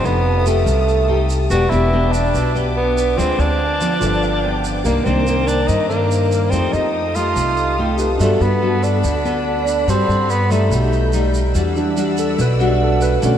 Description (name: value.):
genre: bossa nova.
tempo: 143 BPM.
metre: 4/4.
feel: straight.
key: G major.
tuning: A4 = 440 Hz.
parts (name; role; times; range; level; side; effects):
breathy tenor saxophone; melody; 0.0-11.3 s; A3 to F#4; -20 LUFS; right 1 dB; tape echo.
nylon-string guitar; accompaniment; 0.0-13.4 s; G2 to A4; -21 LUFS; left 1 dB; lush chorus.
warm grand piano; accompaniment; 0.0-13.4 s; D3 to C6; -26 LUFS; right 2 dB; wide subtle chorus.
warm studio string section; sustained chords; 0.0-13.4 s; A4 to G6; -28 LUFS; left 2 dB; none.
upright bass; bass; 0.0-13.4 s; E1 to G2; -19 LUFS; equal; none.
tube shaker; percussion; 0.1-13.4 s; none; -34 LUFS; right 7 dB; none.
room: wet lush hall reverb, RT60 2.6 s.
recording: dreamy mix soaked in reverb.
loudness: -15 LUFS.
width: side -9 dB against mid.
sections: 0.0-11.6 A section; 11.6-13.4 B section.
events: grand piano fill 4.0-4.9; grand piano solo 11.6-13.4.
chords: 0.0 F9; 1.5 Em7; 3.2 Dm7b5; 4.0 G7; 4.9 Cm9; 6.5 F9; 8.2 Gmaj9; 10.7 B7b13; 11.6 Em9.